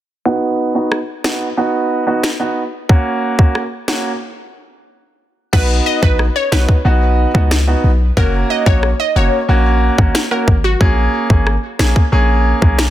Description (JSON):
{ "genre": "dancehall", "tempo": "91 BPM", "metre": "4/4", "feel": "straight", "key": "unclear", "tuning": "A4 = 440 Hz", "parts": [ { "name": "clear grand piano", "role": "accompaniment", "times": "0.3-12.8 s", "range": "Bb3 to Ab4", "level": "-17 LUFS", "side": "right 2 dB", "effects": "low-pass filter" }, { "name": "island pop drum kit", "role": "drums", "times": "0.9-12.9 s", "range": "crash cymbal, finger snaps, kick drum, rim click, snare drum", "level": "-14 LUFS", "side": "equal", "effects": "none" }, { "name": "glassy wavetable pluck", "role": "melody", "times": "5.5-10.8 s", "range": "Gb4 to D#5", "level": "-20 LUFS", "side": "equal", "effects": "chorus, tape echo" }, { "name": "warm 808-style bass", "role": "bass", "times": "5.5-12.9 s", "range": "Gb1 to Db2", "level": "-14 LUFS", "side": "equal", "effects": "none" } ], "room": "little or no reverb", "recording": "dense, heavily limited modern master", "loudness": "-12 LUFS", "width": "side -13 dB against mid", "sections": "0.3-5.5 A section; 5.5-12.9 B section", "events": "filter sweep on grand piano 0.3-5.5; break 4.2-5.5", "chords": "0.3 B; 2.9 Gb; 5.5 B; 8.2 Gb; 10.8 Bbm7", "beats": "| 0.26 0.92 1.58 2.24 | 2.90 3.55 4.21 4.87 | 5.53 6.19 6.85 7.51 | 8.17 8.83 9.49 10.15 | 10.81 11.47 12.13 12.79" }